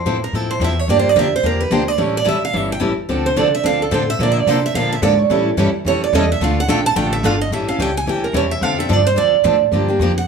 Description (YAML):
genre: acoustic string swing (jazz manouche)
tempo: 217 BPM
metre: 4/4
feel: swing 57% on 8ths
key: D minor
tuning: A4 = 440 Hz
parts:
  - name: picked steel-string acoustic guitar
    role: melody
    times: 0.0-10.3 s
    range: A4 to A5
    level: -18 LUFS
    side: right 7 dB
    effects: none
  - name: upright bass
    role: bass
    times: 0.0-10.3 s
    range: F1 to C3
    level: -21 LUFS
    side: equal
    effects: none
  - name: picked steel-string acoustic guitar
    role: accompaniment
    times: 0.1-10.1 s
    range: D3 to A4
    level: -20 LUFS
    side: left 4 dB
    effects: none
  - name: picked steel-string acoustic guitar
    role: accompaniment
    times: 3.1-7.3 s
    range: D3 to A4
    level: -22 LUFS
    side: right 5 dB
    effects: none
room: moderate studio reverb, RT60 0.6 s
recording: small room reverb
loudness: -14 LUFS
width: side -6 dB against mid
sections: 0.0-7.5 A section; 7.5-10.3 A section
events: steel-string acoustic guitar solo 0.0-10.3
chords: 0.0 Fmaj7; 0.9 Gm7; 2.0 A7; 3.1 Dm7; 4.2 Bbmaj7; 5.3 A7; 6.4 Dm; 7.5 A7; 8.6 Dm7; 9.7 Gm7